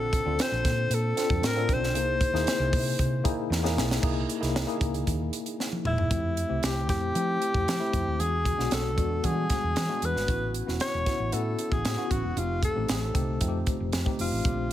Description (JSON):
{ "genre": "polished 1980s jazz-funk pop", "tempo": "115 BPM", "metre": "4/4", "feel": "straight", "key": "unclear", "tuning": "A4 = 439 Hz", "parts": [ { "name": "breathy alto saxophone", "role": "melody", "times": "0.0-14.7 s", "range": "E4 to C#5", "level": "-30 LUFS", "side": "left 2 dB", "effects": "none" }, { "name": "tine electric piano", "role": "accompaniment", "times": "0.0-14.7 s", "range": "G3 to A4", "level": "-32 LUFS", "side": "left 2 dB", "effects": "overdrive, fast stereo tremolo, wide subtle chorus" }, { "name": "hollow-body short-scale fingered electric bass", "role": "bass", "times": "0.0-14.7 s", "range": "E1 to F3", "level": "-30 LUFS", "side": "equal", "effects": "none" }, { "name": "crisp fusion drum kit", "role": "drums", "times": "0.1-14.7 s", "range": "crash cymbal, hi-hat, kick drum, snare drum, toms", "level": "-30 LUFS", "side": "right 1 dB", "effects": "none" } ], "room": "small room ambience", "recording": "none", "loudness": "-25 LUFS", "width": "side -12 dB against mid", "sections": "0.0-4.0 A section; 4.0-6.1 B section; 6.1-14.7 C section", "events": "drum fill 3.5-4.0, 5.6-6.1", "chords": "0.0 Bbmaj9; 2.0 C7alt; 6.1 Fmaj9; 8.2 E9; 10.3 A6; 12.4 F7", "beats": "0.40 0.92 1.43 | 1.95 2.47 2.99 3.51 | 4.03 4.55 5.07 5.59 | 6.11 6.63 7.15 7.67 | 8.19 8.72 9.24 9.76 | 10.28 10.80 11.32 11.84 | 12.37 12.89 13.41 13.93 | 14.45" }